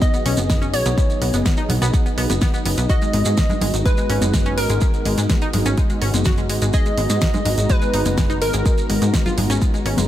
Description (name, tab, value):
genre	progressive house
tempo	125 BPM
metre	4/4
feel	straight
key	G# minor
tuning	A4 = 440 Hz
part	plucky unison lead	melody	0.0-9.0 s	A#4 to D#5	-25 LUFS	equal	digital delay
part	supersaw pad	sustained chords	0.0-10.1 s	F#3 to A#5	-26 LUFS	right 1 dB	sidechain pumping, low-pass filter
part	analog pluck	arpeggios	0.0-10.1 s	G#3 to G#4	-25 LUFS	left 2 dB	chorus, sidechain pumping, ping-pong delay
part	electronic kick drum	drums	0.0-9.7 s	none	-19 LUFS	equal	none
part	pop drum kit	drums	0.0-10.1 s	hi-hat, rim click, snare drum	-27 LUFS	right 1 dB	none
part	shekere	percussion	0.0-10.1 s	none	-31 LUFS	right 4 dB	none
part	plucky analog bass	bass	0.3-10.1 s	F#1 to G#2	-21 LUFS	equal	sidechain pumping
part	congas	percussion	0.4-10.1 s	none	-28 LUFS	equal	sidechain pumping on perc
room	little or no reverb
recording	none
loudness	-16 LUFS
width	side -12 dB against mid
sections	0.0-10.1 A section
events	filter sweep on supersaw synth 0.0-10.1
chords	0.0 B; 2.9 G#m7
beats	0.02 0.50 | 0.98 1.46 1.94 2.42 | 2.90 3.38 3.86 4.34 | 4.82 5.30 5.78 6.26 | 6.74 7.22 7.70 8.18 | 8.66 9.14 9.62